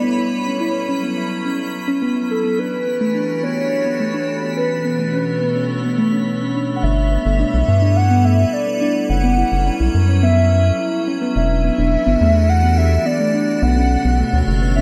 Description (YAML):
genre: IDM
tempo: 106 BPM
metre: 4/4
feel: straight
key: B minor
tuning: A4 = 439 Hz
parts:
  - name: warbly nostalgic lead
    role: melody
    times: 0.0-14.8 s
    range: A4 to F#5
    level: -24 LUFS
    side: equal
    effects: lush chorus, delay
  - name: icy glass pad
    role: sustained chords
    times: 0.0-14.8 s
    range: B2 to C#5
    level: -27 LUFS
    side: equal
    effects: chorus, built-in reverb
  - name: harp-like synth pluck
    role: arpeggios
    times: 0.0-14.8 s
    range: A3 to E4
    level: -23 LUFS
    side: equal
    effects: chorus, dub echo
  - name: twinkling granular texture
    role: texture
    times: 0.0-6.8 s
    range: B5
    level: -35 LUFS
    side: equal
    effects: built-in reverb
  - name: round analog bass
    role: bass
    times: 6.8-14.8 s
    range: E1 to G2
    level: -18 LUFS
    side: equal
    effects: none
room: light reverb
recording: none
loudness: -17 LUFS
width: mono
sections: 0.0-6.8 A section; 6.8-14.8 B section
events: none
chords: 0.0 F#7sus4; 2.3 Em11; 4.6 Bm9; 6.8 G69; 9.1 F#7sus4; 11.4 Em11; 13.6 Bm9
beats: | 0.04 0.60 1.17 1.74 | 2.30 2.87 3.44 4.00 | 4.57 5.13 5.70 6.26 | 6.83 7.40 7.96 8.53 | 9.10 9.66 10.23 10.79 | 11.36 11.93 12.49 13.06 | 13.62 14.19 14.76